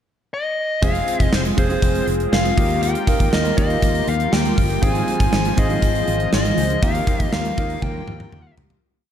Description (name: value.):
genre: 1980s-style pop.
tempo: 120 BPM.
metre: 4/4.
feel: straight.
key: unclear.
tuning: A4 = 440 Hz.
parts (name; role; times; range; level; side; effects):
dark smooth lead guitar; melody; 0.3-8.5 s; C5 to Ab5; -24 LUFS; left 3 dB; overdrive.
bright concert grand piano; accompaniment; 0.8-8.8 s; Ab3 to Bb4; -26 LUFS; right 3 dB; none.
shimmering ambient pad; sustained chords; 2.1-8.8 s; Eb3 to F4; -28 LUFS; equal; chorus, built-in reverb.
analog synth brass; stabs; 0.8-8.8 s; C4 to C5; -29 LUFS; left 3 dB; chorus.
fretless electric bass; bass; 0.8-8.8 s; F1 to Eb2; -23 LUFS; equal; none.
gated 80s drum kit; drums; 0.8-8.8 s; hi-hat, kick drum, snare drum, toms; -20 LUFS; equal; none.
room: light reverb, studio ambience.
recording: dark, warm production.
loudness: -16 LUFS.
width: side -9 dB against mid.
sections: 0.0-0.8 pickup bar; 0.8-8.8 pre-chorus.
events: fade-out 6.8-8.8; drum fill 7.8-8.8.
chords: 0.0 N.C.; 0.8 Fm; 2.6 Ebadd9; 4.8 Ab6; 6.8 Ebadd9.